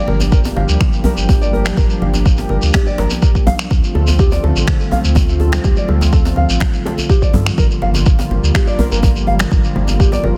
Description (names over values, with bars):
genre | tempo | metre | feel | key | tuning
afro house | 124 BPM | 4/4 | straight | G minor | A4 = 441 Hz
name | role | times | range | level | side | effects
warm analog pad | sustained chords | 0.0-10.4 s | D3 to G4 | -24 LUFS | equal | chorus, sidechain pumping
nylon-string guitar | arpeggios | 0.0-10.4 s | G4 to F5 | -25 LUFS | equal | sidechain pumping, tape echo
warm sub bass | bass | 0.1-10.3 s | G1 to G2 | -19 LUFS | equal | tube saturation, sidechain pumping
congas | percussion | 0.1-10.3 s | none | -27 LUFS | equal | none
djembe | percussion | 0.2-10.2 s | none | -24 LUFS | equal | none
shekere | percussion | 0.2-10.2 s | none | -28 LUFS | equal | none
electronic kick drum | drums | 0.3-10.1 s | none | -16 LUFS | equal | studio reverb
electronic finger snaps | drums | 0.8-9.5 s | none | -27 LUFS | equal | soft clipping on snare, studio reverb
room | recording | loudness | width
light reverb, studio ambience | dense, heavily limited modern master | -14 LUFS | mono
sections
0.0-10.4 A section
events
none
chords
0.0 Gm7; 3.7 Dm7; 7.6 Gm7